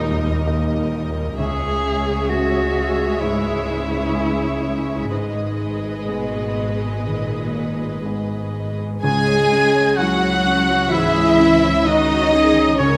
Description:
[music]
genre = cinematic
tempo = 63 BPM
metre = 4/4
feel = uneven beats, rubato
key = unclear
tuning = A4 = 440 Hz
[part]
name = rich cello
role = melody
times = 0.0-8.0 s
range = G#3 to G#4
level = -28 LUFS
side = equal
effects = none
[part]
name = warm studio violin section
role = second line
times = 0.0-13.0 s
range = A#4 to G#5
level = -26 LUFS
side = equal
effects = none
[part]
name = felt-muted upright piano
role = accompaniment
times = 0.0-13.0 s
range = C#2 to E5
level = -28 LUFS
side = equal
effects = none
[part]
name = warm studio viola section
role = accompaniment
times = 0.0-13.0 s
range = G3 to A#4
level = -31 LUFS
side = equal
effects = none
[part]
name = concert harp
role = arpeggios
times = 0.0-13.0 s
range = G#2 to D#6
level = -35 LUFS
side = equal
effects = none
[part]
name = warm studio cello section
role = bass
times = 0.0-13.0 s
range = C#2 to G#3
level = -28 LUFS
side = equal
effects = none
[part]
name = warm studio double bass section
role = bass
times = 0.0-13.0 s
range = G#1 to D#2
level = -29 LUFS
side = equal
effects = none
[part]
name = warm studio violin section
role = melody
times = 9.0-13.0 s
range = C#4 to G#4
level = -29 LUFS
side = equal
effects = none
[part]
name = clear oboe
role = second line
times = 9.0-13.0 s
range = C#5 to G#5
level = -24 LUFS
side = equal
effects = none
[part]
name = dark clarinet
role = second line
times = 9.0-13.0 s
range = C#4 to G#4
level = -26 LUFS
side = equal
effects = none
[part]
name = warm French horn section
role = sustained chords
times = 9.0-13.0 s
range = C#4 to G#4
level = -23 LUFS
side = equal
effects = none
[sound]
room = wet recital hall reverb, RT60 1.7 s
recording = none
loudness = -19 LUFS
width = mono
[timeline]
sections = 0.0-9.0 A section; 9.0-13.0 A section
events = none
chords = 0.0 D#; 1.4 C#m; 5.1 G#m; 9.0 C#m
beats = 0.47 | 1.38 2.29 3.21 4.15 | 5.11 6.08 7.06 8.05 | 9.03 9.98 10.92 11.87 | 12.79

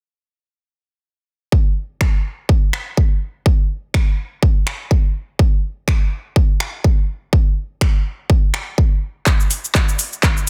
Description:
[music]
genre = house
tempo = 124 BPM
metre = 4/4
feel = swing 57% on 16ths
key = none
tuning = none
[part]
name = electronic kick drum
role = drums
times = 1.5-10.3 s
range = none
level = -17 LUFS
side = equal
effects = overdrive, studio ambience
[part]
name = big-room dance drum kit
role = drums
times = 2.0-10.5 s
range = finger snaps, handclaps, hi-hat, shaker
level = -25 LUFS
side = equal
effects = overdrive, soft clipping on snare, studio ambience
[sound]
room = little or no reverb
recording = dense, heavily limited modern master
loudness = -18 LUFS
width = mono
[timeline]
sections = 1.5-9.3 A section; 9.3-10.5 B section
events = build-up 9.3-10.5; drum fill 9.3-10.5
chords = none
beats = | 1.52 2.01 2.49 2.97 | 3.46 3.94 4.43 4.91 | 5.39 5.88 6.36 6.84 | 7.33 7.81 8.30 8.78 | 9.26 9.75 10.23

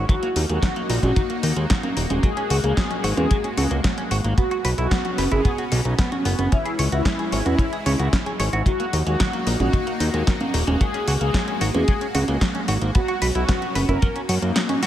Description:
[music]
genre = italo disco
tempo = 112 BPM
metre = 4/4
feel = straight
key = unclear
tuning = A4 = 440 Hz
[part]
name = lush unison pad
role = sustained chords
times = 0.0-14.9 s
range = G#3 to F#4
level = -29 LUFS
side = left 1 dB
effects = chorus, phaser
[part]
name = clean electric guitar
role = arpeggios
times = 0.0-14.9 s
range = B2 to C#5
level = -29 LUFS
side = right 2 dB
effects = harmonic tremolo, digital delay
[part]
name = fat analog bass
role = bass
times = 0.0-14.5 s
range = D#1 to F#2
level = -22 LUFS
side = equal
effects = none
[part]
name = mellow synth brass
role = melody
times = 0.1-14.2 s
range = E4 to A#4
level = -27 LUFS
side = left 1 dB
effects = chorus, digital delay
[part]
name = house drum kit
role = drums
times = 0.1-14.9 s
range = congas, hi-hat, snare drum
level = -25 LUFS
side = equal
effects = small room ambience, gated reverb
[part]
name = kick drum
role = drums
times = 0.1-14.1 s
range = none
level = -20 LUFS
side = equal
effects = small room ambience
[sound]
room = digital ambience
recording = none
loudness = -19 LUFS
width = side -12 dB against mid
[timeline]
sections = 0.0-14.9 A section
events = none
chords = 0.1 D#m; 2.2 F#add9; 4.4 Bsus2; 6.5 C#m; 8.7 D#m; 10.8 F#add9; 12.9 Bsus2; 14.0 F#6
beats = | 0.09 0.63 1.17 1.70 | 2.24 2.77 3.31 3.84 | 4.38 4.92 5.45 5.99 | 6.52 7.06 7.59 8.13 | 8.66 9.20 9.74 10.27 | 10.81 11.34 11.88 12.41 | 12.95 13.49 14.02 14.56

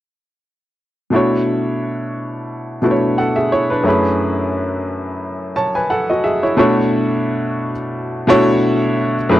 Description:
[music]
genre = R&B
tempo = 88 BPM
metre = 4/4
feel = swing 56% on 16ths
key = B dorian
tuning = A4 = 440 Hz
[part]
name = clear baby grand piano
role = accompaniment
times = 1.1-9.4 s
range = F#2 to A5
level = -15 LUFS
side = equal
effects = none
[sound]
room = little or no reverb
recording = dry, close 1970s-style studio recording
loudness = -15 LUFS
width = side -14 dB against mid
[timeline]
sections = 1.1-6.6 A section; 6.6-9.4 B section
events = none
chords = 1.1 Bm11; 3.9 F#m11; 6.6 Bm11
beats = | 1.13 1.81 2.49 3.17 | 3.85 4.54 5.22 5.90 | 6.58 7.26 7.94 8.63 | 9.31

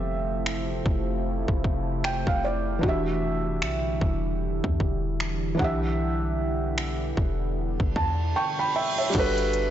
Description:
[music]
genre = contemporary R&B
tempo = 76 BPM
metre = 4/4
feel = swing 58% on 16ths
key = unclear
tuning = A4 = 440 Hz
[part]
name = felt-muted upright piano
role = accompaniment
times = 0.0-9.7 s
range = E3 to C#6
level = -28 LUFS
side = right 2 dB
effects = none
[part]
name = deep dark ambient pad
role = sustained chords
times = 0.0-9.1 s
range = C3 to E4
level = -32 LUFS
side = equal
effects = chorus, built-in reverb
[part]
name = warm 808-style bass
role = bass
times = 0.0-9.7 s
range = E1 to E2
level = -30 LUFS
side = equal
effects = none
[part]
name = trap drum kit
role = drums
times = 0.5-9.7 s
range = crash cymbal, finger snaps, hi-hat, kick drum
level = -28 LUFS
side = equal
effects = soft clipping on snare
[part]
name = reverse cymbal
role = sound effects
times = 7.9-9.1 s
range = none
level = -34 LUFS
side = right 4 dB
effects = none
[sound]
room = light reverb, digital ambience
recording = blown-out, overdriven recording, overdrive, nothing above 7.8 kHz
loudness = -24 LUFS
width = side -11 dB against mid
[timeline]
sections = 0.0-9.1 A section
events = felt piano fill 1.6-2.8, 7.6-9.1; reverse cymbal 7.9-9.1; drums muted 8.4-9.1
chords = 0.0 Fmaj7; 2.8 Em9; 9.1 Gmaj7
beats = 0.46 1.25 2.04 | 2.83 3.62 4.41 5.20 | 5.99 6.78 7.57 8.36 | 9.15

